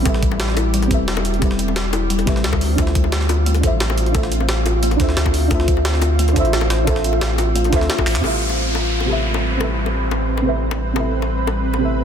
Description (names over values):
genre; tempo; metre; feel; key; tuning
liquid drum and bass; 176 BPM; 4/4; straight; A minor; A4 = 441 Hz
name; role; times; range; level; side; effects
deep mellow chord stab; accompaniment; 0.0-12.0 s; C4 to E5; -24 LUFS; right 2 dB; chorus, phaser, ping-pong delay
shimmering ambient pad; sustained chords; 0.0-12.0 s; G3 to B4; -25 LUFS; equal; chorus, built-in reverb, sidechain pumping
saturated sub bass; bass; 0.0-12.0 s; E1 to G2; -20 LUFS; equal; none
kalimba; arpeggios; 0.1-7.9 s; G3 to F4; -26 LUFS; left 5 dB; tape echo
electronic kick drum; drums; 0.1-8.1 s; none; -20 LUFS; equal; none
jungle sampler-style drum kit; drums; 0.1-8.2 s; handclaps, hi-hat, snare drum; -25 LUFS; right 1 dB; none
jungle sampler-style drum kit; drums; 0.1-8.2 s; hi-hat, snare drum; -29 LUFS; equal; high-pass filter on hats, high-pass filter on snare
bongos; percussion; 0.1-11.8 s; none; -29 LUFS; left 9 dB; none
downlifter; sound effects; 8.2-11.0 s; none; -26 LUFS; equal; none
room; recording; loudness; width
little or no reverb; dense, heavily limited modern master; -16 LUFS; side -8 dB against mid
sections
0.0-8.2 A section; 8.2-12.0 B section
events
filter sweep on synth stab 0.0-8.2; drum fill 8.1; band accent 8.2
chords
0.0 Am9; 2.6 Dm9; 8.2 Am9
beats
| 0.06 0.40 0.74 1.08 | 1.42 1.76 2.10 2.44 | 2.78 3.12 3.46 3.81 | 4.15 4.49 4.83 5.17 | 5.51 5.85 6.19 6.53 | 6.87 7.21 7.55 7.90 | 8.24 8.58 8.92 9.26 | 9.60 9.94 10.28 10.62 | 10.96 11.30 11.65 11.99